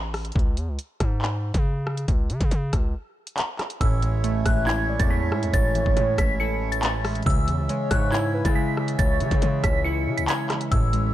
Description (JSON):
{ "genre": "hip hop, drill", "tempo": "139 BPM", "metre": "4/4", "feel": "half-time", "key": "C# minor", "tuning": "A4 = 440 Hz", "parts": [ { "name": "distorted 808-style bass", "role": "bass", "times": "0.0-11.1 s", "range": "G#1 to C#3", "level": "-27 LUFS", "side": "equal", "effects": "distortion" }, { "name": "drill drum kit", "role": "drums", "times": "0.1-11.0 s", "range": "handclaps, hi-hat, kick drum, rim click", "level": "-24 LUFS", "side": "equal", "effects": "vintage 12-bit sampler grit" }, { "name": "delicate synth tine bell", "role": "melody", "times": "3.8-11.1 s", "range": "E6 to C#7", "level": "-29 LUFS", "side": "equal", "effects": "chorus, phaser, tape echo" }, { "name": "glassy digital keys", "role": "accompaniment", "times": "3.8-11.1 s", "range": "A2 to E4", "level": "-26 LUFS", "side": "equal", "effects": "chorus" }, { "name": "accordion", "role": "sustained chords", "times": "3.8-11.1 s", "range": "C#3 to E5", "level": "-33 LUFS", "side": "right 7 dB", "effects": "none" }, { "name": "warm velvety synth lead", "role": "second line", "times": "4.2-9.8 s", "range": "A4 to E5", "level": "-30 LUFS", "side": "equal", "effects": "chorus, tremolo, tape echo" } ], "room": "little or no reverb", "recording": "dark, warm production", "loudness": "-21 LUFS", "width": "side -13 dB against mid", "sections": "0.0-3.8 A section; 3.8-11.1 B section", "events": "break 0.0-3.8", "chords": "0.4 C#5; 3.8 Amaj7; 7.3 C#m" }